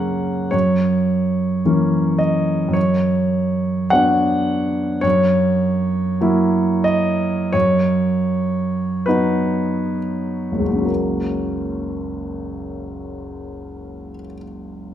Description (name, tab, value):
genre	classical, romantic character piece for solo piano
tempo	30-55 BPM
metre	2/4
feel	rubato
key	F# major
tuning	A4 = 439 Hz
part	warm concert grand piano	solo	0.0-14.9 s	F#1 to F#5	-17 LUFS	equal	none
room	wet recital hall reverb, RT60 1.4 s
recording	none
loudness	-16 LUFS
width	side -10 dB against mid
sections	0.5-10.9 A section; 10.9-14.9 B section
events	slowing down 3.9-10.9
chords	0.0 F#; 0.5 F#7; 2.8 Bm/F#; 5.0 F#7; 7.5 B/F#; 10.9 F#